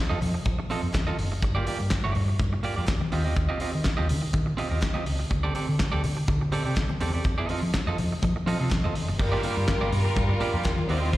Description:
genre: disco.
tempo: 124 BPM.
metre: 4/4.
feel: straight.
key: G minor.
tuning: A4 = 440 Hz.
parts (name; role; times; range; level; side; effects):
electric guitar at the edge of break-up; accompaniment; 0.1-11.2 s; Bb3 to Eb5; -31 LUFS; right 3 dB; slapback echo.
hollow-body short-scale fingered electric bass; bass; 0.1-11.2 s; F#1 to F3; -27 LUFS; equal; none.
warm soul drum kit; drums; 0.2-11.2 s; crash cymbal, handclaps, hi-hat, kick drum, snare drum; -29 LUFS; equal; none.
congas; percussion; 0.2-10.9 s; none; -33 LUFS; left 2 dB; slapback echo.
group handclap; percussion; 0.9-10.8 s; none; -43 LUFS; left 1 dB; none.
warm studio violin section; second line; 9.2-11.2 s; G3 to C5; -29 LUFS; equal; none.
clear studio string section; sustained chords; 9.2-11.2 s; Eb3 to Bb4; -35 LUFS; equal; none.
room: small room ambience.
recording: live gig heard through the venue's PA, recital hall reverb.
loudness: -24 LUFS.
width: side -16 dB against mid.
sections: 0.0-9.2 A section; 9.2-11.2 B section.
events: none.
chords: 0.0 F7; 1.4 Gm7; 3.1 Eb69; 5.3 D7sus4; 7.3 F7; 9.2 Gm7.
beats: 0.46 0.94 | 1.43 1.91 2.40 2.88 | 3.37 3.85 4.34 4.82 | 5.31 5.79 6.28 6.77 | 7.25 7.74 8.22 8.71 | 9.20 9.68 10.17 10.65 | 11.14.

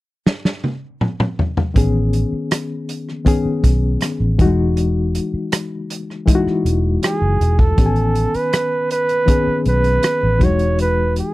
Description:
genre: lush 1970s-style soul.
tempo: 80 BPM.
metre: 4/4.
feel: straight.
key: unclear.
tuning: A4 = 440 Hz.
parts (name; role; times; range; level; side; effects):
vintage drum kit; drums; 0.3-11.3 s; hi-hat, kick drum, rim click, snare drum, toms; -17 LUFS; equal; none.
reed electric piano; accompaniment; 1.7-11.3 s; D#3 to G#5; -20 LUFS; left 3 dB; fast tremolo.
vintage muted fingered electric bass; bass; 1.8-11.2 s; E1 to B1; -18 LUFS; equal; none.
warm flugelhorn; melody; 7.0-11.3 s; G#4 to C#5; -19 LUFS; right 2 dB; none.
room: little or no reverb.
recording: dry, close 1970s-style studio recording.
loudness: -15 LUFS.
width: side -18 dB against mid.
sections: 0.0-1.8 A section; 1.8-7.8 B section; 7.8-11.3 C section.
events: drum fill 0.3-1.8.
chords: 0.0 N.C.; 1.8 Amaj9#11; 4.4 Emaj9; 7.8 Amaj9#11; 10.4 Emaj9.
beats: 0.26 1.01 | 1.76 2.51 3.27 4.02 | 4.77 5.52 6.28 7.03 | 7.78 8.53 9.29 10.04 | 10.79.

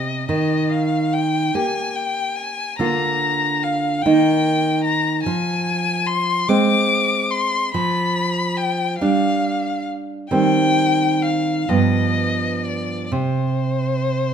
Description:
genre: romantic duo for violin and classical guitar.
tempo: 40-50 BPM (dotted quarters).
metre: 6/8.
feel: rubato.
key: unclear.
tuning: A4 = 442 Hz.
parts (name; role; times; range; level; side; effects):
rich violin; melody; 0.0-14.3 s; C5 to D6; -21 LUFS; left 4 dB; none.
nylon-string guitar; accompaniment; 0.0-14.3 s; G2 to G4; -19 LUFS; right 2 dB; none.
room: moderate recital hall reverb, RT60 1.4 s.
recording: minimal, uncompressed stereo recording.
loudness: -17 LUFS.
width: side -8 dB against mid.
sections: 0.0-14.3 A section.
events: none.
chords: 0.3 Eb; 2.8 Bb/D; 4.1 Eb; 5.3 Fm; 7.7 G7/F; 10.3 Cm/Eb; 11.7 G7; 13.1 N.C..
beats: | 0.30 1.54 | 2.80 4.06 | 5.27 6.50 | 7.75 9.01 | 10.31 11.70 | 13.13.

